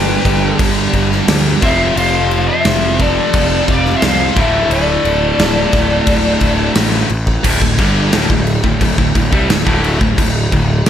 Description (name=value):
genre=hard rock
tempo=88 BPM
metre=4/4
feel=straight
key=unclear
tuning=A4 = 442 Hz
part: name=lead guitar through a small cranked amp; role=melody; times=0.0-6.7 s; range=B4 to F5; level=-18 LUFS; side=left 2 dB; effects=overdrive, slapback echo
part: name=octave-fuzz lead guitar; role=second line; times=0.0-6.7 s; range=G4 to D5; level=-21 LUFS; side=right 3 dB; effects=distortion
part: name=high-gain distorted guitar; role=riff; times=0.0-10.9 s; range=D2 to G3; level=-16 LUFS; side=equal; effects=distortion
part: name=fuzz picked electric bass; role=bass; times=0.0-10.9 s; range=D1 to D2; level=-18 LUFS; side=equal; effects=overdrive
part: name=gated 80s drum kit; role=drums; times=0.3-10.9 s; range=crash cymbal, kick drum, snare drum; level=-16 LUFS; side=equal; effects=none
room=little or no reverb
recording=none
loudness=-11 LUFS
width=side -10 dB against mid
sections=0.0-7.4 A section; 7.4-10.9 B section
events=none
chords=0.0 G; 1.6 F; 4.4 D5